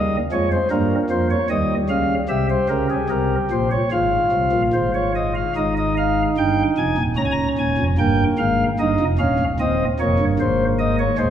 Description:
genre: classical, baroque-style 3-part fugue for pipe organ.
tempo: 74 BPM.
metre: 4/4.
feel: straight.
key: Ab major from 5.6 s.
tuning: A4 = 440 Hz.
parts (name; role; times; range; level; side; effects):
pipe organ, flutes; solo; 0.0-11.3 s; Db1 to Bb5; -17 LUFS; equal; none.
room: wet concert hall reverb, RT60 2.4 s.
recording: small room ambience.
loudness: -17 LUFS.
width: side -9 dB against mid.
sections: 0.0-5.6 A section; 5.6-11.3 B section.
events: none.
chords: 0.0 Fm; 0.7 Gm7b5; 2.3 C7; 3.9 Fm/Ab; 5.6 Ab5; 7.2 Bbm7/Db; 8.8 Eb7; 10.4 Ab.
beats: 0.70 1.49 | 2.30 3.11 3.92 4.74 | 5.56 6.38 7.18 7.99 | 8.80 9.60 10.40 11.19.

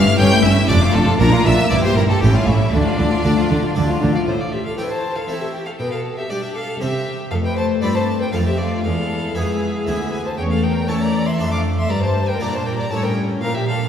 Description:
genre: classical, baroque-style concerto movement with solo episodes.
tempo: 118 BPM.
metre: 3/4.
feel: straight.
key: D minor, A minor from 4.3 s.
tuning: A4 = 441 Hz.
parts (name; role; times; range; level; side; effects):
clear chamber violin section; melody; 0.0-13.9 s; C4 to G6; -28 LUFS; left 3 dB; none.
clear violin; melody; 0.0-13.9 s; D4 to D6; -25 LUFS; left 1 dB; none.
rich chamber violin section; second line; 0.0-13.8 s; C#4 to F5; -24 LUFS; left 2 dB; none.
harpsichord; accompaniment; 0.0-13.9 s; D2 to A4; -26 LUFS; equal; none.
warm symphonic viola section; accompaniment; 0.0-13.9 s; E3 to Bb3; -23 LUFS; left 3 dB; none.
warm chamber double bass section; bass; 0.0-4.1 s; F1 to D2; -21 LUFS; right 2 dB; none.
warm chamber cello section; bass; 0.2-13.9 s; D2 to E3; -21 LUFS; right 2 dB; none.
room: wet concert hall reverb, RT60 2.2 s.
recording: heard from further back in the room.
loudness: -16 LUFS.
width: side -8 dB against mid.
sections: 0.0-4.3 A section; 4.3-13.9 B section.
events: none.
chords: 0.0 A7/G; 0.7 Dm/F; 1.2 Bb; 1.7 Edim/G; 2.2 A7; 2.7 Dm; 4.3 Am; 5.8 G/B; 6.8 C; 7.3 F; 8.8 E; 10.4 A/E; 11.4 Dm/F; 11.9 Gm; 12.9 A7.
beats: 0.19 0.69 | 1.20 1.71 2.22 | 2.73 3.24 3.76 | 4.27 4.78 5.29 | 5.79 6.30 6.80 | 7.31 7.82 8.32 | 8.84 9.35 9.87 | 10.38 10.89 11.40 | 11.90 12.41 12.92 | 13.42.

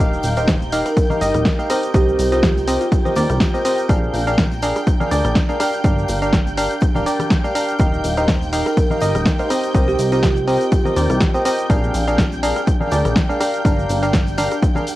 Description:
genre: piano house.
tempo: 123 BPM.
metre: 4/4.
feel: swing 55% on 16ths.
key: Eb major.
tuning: A4 = 439 Hz.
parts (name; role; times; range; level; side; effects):
analog string pad; sustained chords; 0.0-15.0 s; G5 to G6; -30 LUFS; right 1 dB; ensemble chorus, sidechain pumping, cassette tape.
barking FM electric piano; riff; 0.0-14.8 s; C4 to F5; -20 LUFS; equal; chorus, sidechain pumping, cassette tape, analog delay.
plucky analog bass; bass; 0.0-14.5 s; D1 to Eb2; -22 LUFS; equal; sidechain pumping.
punchy analog drum machine; drums; 0.0-15.0 s; cabasa, hi-hat, rim click, snare drum; -24 LUFS; equal; overdrive, cassette tape.
warbly tape-like pad; texture; 0.0-15.0 s; C4 to Bb5; -30 LUFS; right 1 dB; none.
tambourine and congas; percussion; 0.2-15.0 s; none; -33 LUFS; left 3 dB; none.
buzzing kalimba; melody; 0.4-3.3, 8.2-10.5 s; F4 to C5; -24 LUFS; right 2 dB; cassette tape, analog delay.
electronic kick drum; drums; 0.5-14.7 s; none; -17 LUFS; equal; overdrive, cassette tape.
room: light reverb.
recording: home recording on cassette.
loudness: -15 LUFS.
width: side -16 dB against mid.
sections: 0.0-15.0 A section.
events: none.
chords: 0.0 Ebadd9; 1.7 Cm7; 3.9 Bb7; 5.6 Gm7; 7.8 Ebadd9; 9.5 Cm7; 11.7 Bb7; 13.4 Gm7.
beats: 0.48 0.97 1.45 | 1.94 2.43 2.92 3.40 | 3.89 4.38 4.87 5.36 | 5.84 6.33 6.82 7.31 | 7.79 8.28 8.77 9.26 | 9.75 10.23 10.72 11.21 | 11.70 12.19 12.67 13.16 | 13.65 14.14 14.62.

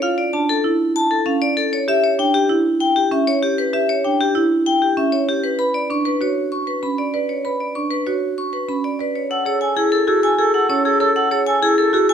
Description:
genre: classical, minimalist pattern music.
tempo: 194 BPM.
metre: 6/4.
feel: straight.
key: F# minor.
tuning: A4 = 441 Hz.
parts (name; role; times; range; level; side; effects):
vibraphone with hard mallets; melody; 0.0-12.1 s; G4 to C#6; -19 LUFS; left 5 dB; none.
marimba with medium hard mallets; arpeggios; 0.0-12.1 s; C#4 to D5; -20 LUFS; right 5 dB; none.
warm oboe; second line; 9.3-12.1 s; A4; -20 LUFS; right 3 dB; none.
room: light reverb.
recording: close, detailed microphones.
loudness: -16 LUFS.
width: side -8 dB against mid.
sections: 0.0-9.3 A section; 9.3-12.1 B section.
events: none.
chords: 0.0 Dmadd9; 1.9 G5; 5.6 Bm; 9.3 F#m7.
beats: | 0.02 0.33 0.64 0.95 1.26 1.57 | 1.88 2.19 2.50 2.81 3.12 3.42 | 3.73 4.04 4.35 4.66 4.97 5.28 | 5.59 5.90 6.21 6.52 6.83 7.14 | 7.45 7.75 8.06 8.37 8.68 8.99 | 9.30 9.61 9.92 10.23 10.54 10.85 | 11.16 11.47 11.78 12.09.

